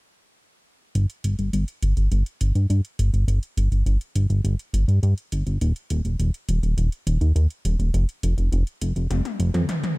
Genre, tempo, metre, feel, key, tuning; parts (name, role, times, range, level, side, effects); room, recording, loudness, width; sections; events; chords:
synthwave; 103 BPM; 4/4; straight; A4 = 441 Hz
chorused synth bass; bass; 0.9-9.7 s; Eb1 to G2; -19 LUFS; equal
80s electronic pad drums; drums; 1.0-10.0 s; hi-hat, toms; -32 LUFS; left 1 dB
little or no reverb; -20 LUFS; side -23 dB against mid
1.0-10.0 A section
filter sweep on analog synth bass 1.0-10.0; drum fill 9.1-10.0; break 9.7